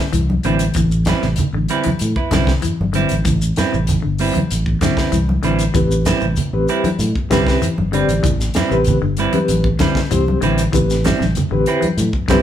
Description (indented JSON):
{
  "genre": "afrobeat",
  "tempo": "96 BPM",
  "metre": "4/4",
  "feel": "straight",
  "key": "A minor",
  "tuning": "A4 = 439 Hz",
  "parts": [
    { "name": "semi-hollow electric guitar", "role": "arpeggios", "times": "0.0-12.4 s", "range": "C3 to E3", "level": "-23 LUFS", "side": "left 6 dB", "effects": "none" },
    { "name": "fingered electric bass", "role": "bass", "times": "0.1-12.4 s", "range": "G1 to A2", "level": "-20 LUFS", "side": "equal", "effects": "none" },
    { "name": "tight funk drum kit", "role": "drums", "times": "0.1-12.4 s", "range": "hi-hat, kick drum, snare drum", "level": "-23 LUFS", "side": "equal", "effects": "none" },
    { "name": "shekere", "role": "percussion", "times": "0.1-12.4 s", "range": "none", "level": "-26 LUFS", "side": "equal", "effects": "none" },
    { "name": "congas", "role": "percussion", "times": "0.3-12.4 s", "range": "none", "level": "-23 LUFS", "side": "equal", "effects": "none" },
    { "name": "clean electric guitar", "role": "stabs", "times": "0.4-12.4 s", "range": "G3 to B4", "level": "-21 LUFS", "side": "right 6 dB", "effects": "none" },
    { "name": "reed electric piano", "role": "accompaniment", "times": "5.8-12.4 s", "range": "C4 to D5", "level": "-20 LUFS", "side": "left 2 dB", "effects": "fast tremolo" }
  ],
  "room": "moderate large studio reverb, RT60 0.9 s",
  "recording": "band playing live in one room",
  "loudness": "-14 LUFS",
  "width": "side -10 dB against mid",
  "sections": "0.0-12.4 A section",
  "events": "none",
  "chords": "0.0 Am9"
}